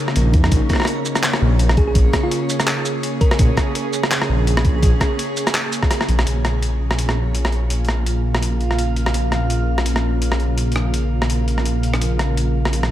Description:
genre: half-time drum and bass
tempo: 167 BPM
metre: 4/4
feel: swing 56% on 16ths, half-time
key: Bb minor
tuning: A4 = 440 Hz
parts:
  - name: bowed-like drone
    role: sustained chords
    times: 0.0-12.9 s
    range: Db3 to Bb4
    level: -24 LUFS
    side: right 1 dB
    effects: built-in reverb, sidechain pumping
  - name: backwards swelling texture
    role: texture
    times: 0.0-12.9 s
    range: Db4 to F5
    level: -29 LUFS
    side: right 1 dB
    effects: built-in reverb
  - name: boom bap sampler-style drum kit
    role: drums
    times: 0.1-12.9 s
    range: handclaps, hi-hat, rim click, shaker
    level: -23 LUFS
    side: equal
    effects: overdrive
  - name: dark detuned saw bass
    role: bass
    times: 0.2-12.9 s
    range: Bb1 to F2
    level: -18 LUFS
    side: equal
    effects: none
  - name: electronic kick drum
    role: drums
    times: 0.3-5.9 s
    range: none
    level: -16 LUFS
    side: equal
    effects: overdrive
  - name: thumb-piano-like synth pluck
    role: melody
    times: 1.8-3.4 s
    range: F4 to Bb4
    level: -28 LUFS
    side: right 1 dB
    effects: chorus, tape echo
room: light reverb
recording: none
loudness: -16 LUFS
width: side -12 dB against mid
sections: 0.0-6.3 A section; 6.3-12.9 B section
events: drop 0.0-6.3; kick drops out 5.9-6.3; drum fill 5.9-6.3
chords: 0.0 Bbm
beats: 0.16 | 0.52 0.88 1.24 1.60 | 1.96 2.31 2.67 3.03 | 3.39 3.75 4.11 4.47 | 4.83 5.19 5.55 5.91 | 6.27 6.62 6.99 7.34 | 7.70 8.06 8.42 8.78 | 9.14 9.50 9.86 10.22 | 10.58 10.94 11.30 11.65 | 12.02 12.37 12.73

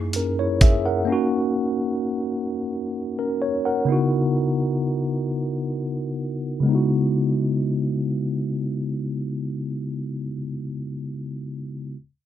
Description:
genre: slow six-eight R&B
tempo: 43 BPM (dotted quarters)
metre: 6/8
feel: straight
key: C# dorian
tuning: A4 = 440 Hz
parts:
  - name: tine electric piano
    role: accompaniment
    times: 0.0-12.0 s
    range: F#2 to F#5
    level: -22 LUFS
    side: equal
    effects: medium stereo tremolo, low-pass filter
  - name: dusty soul sampler-style drum kit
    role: drums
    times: 0.1-0.8 s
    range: hi-hat, kick drum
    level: -15 LUFS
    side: equal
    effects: none
room: light reverb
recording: none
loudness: -21 LUFS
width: side -11 dB against mid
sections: 0.0-6.7 A section; 6.7-9.4 B section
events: filter sweep on tine electric piano 0.0-6.7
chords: 0.0 F#13; 1.1 D#m7; 3.9 C#m11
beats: | 1.07 2.47 | 3.86 5.26 | 6.65 8.05

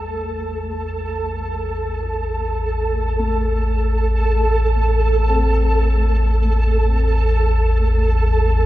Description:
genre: dark ambient drone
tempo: free time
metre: none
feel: none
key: A minor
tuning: A4 = 440 Hz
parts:
  - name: warm concert grand piano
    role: arpeggios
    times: 0.0-8.7 s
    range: G2 to A4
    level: -34 LUFS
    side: left 1 dB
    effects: tape echo
  - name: deep rumbling drone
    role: drone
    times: 0.0-8.7 s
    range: A1 to E2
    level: -18 LUFS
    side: equal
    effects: built-in reverb, lush chorus
  - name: flickering grainy texture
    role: texture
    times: 0.0-8.7 s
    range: A4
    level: -22 LUFS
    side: right 2 dB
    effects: built-in reverb, shimmer reverb
room: moderate echo chamber reverb, RT60 2.3 s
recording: echo-heavy mix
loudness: -16 LUFS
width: side -15 dB against mid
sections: 0.0-8.7 A section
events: fade-in on grand piano 0.0-8.7; filter sweep on synth drone 0.0-8.7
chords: 0.0 Am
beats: free time

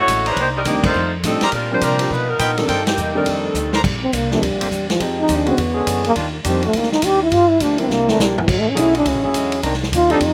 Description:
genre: jazz, big band swing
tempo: 207 BPM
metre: 4/4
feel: swing 62% on 8ths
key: Bb major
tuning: A4 = 439 Hz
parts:
  - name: dark saxophone section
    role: melody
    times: 0.0-3.7 s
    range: Eb3 to Eb5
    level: -22 LUFS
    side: equal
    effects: none
  - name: upright bass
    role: bass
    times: 0.0-10.3 s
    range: F#1 to C3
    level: -28 LUFS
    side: equal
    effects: none
  - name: picked steel-string acoustic guitar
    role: accompaniment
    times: 0.1-10.3 s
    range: F2 to C#5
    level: -31 LUFS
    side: equal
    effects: slapback echo
  - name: swinging big-band drum kit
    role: drums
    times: 0.1-10.3 s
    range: crash cymbal, hi-hat, kick drum, ride cymbal, snare drum, toms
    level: -26 LUFS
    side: equal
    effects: none
  - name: clear trumpet section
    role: stabs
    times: 0.3-3.8 s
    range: D4 to Bb5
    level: -24 LUFS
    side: equal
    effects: slapback echo
  - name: warm grand piano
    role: accompaniment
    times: 0.7-5.6, 7.8-10.2 s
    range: D3 to G#4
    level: -25 LUFS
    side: equal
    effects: slapback echo
  - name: breathy trombone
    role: melody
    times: 4.0-10.3 s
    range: E3 to G4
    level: -20 LUFS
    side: equal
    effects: slapback echo
  - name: clear trombone section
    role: sustained chords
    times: 4.6-10.2 s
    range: D3 to Bb4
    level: -26 LUFS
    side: equal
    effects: none
room: little or no reverb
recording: recorded outdoors, with no room sound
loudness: -18 LUFS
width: mono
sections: 0.0-3.8 A section; 3.8-10.3 B section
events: band accent 0.8, 2.8; drum fill 3.6, 7.9-8.5; trombone solo 3.8-10.3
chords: 0.4 Cm9; 0.9 F7; 1.5 Bb69; 2.1 G7alt; 2.7 Cm7; 3.3 F13; 3.8 Bb69; 5.0 Fm9; 5.6 E13; 6.2 Ebmaj9; 7.3 Gm7; 7.9 C9; 8.5 Dmaj9#11; 9.6 Cm9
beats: 0.07 | 0.36 0.66 0.94 1.24 | 1.52 1.81 2.10 2.39 | 2.68 2.97 3.26 3.55 | 3.84 4.13 4.42 4.71 | 5.00 5.29 5.58 5.87 | 6.16 6.45 6.74 7.03 | 7.32 7.61 7.90 8.19 | 8.47 8.76 9.05 9.34 | 9.63 9.92 10.21

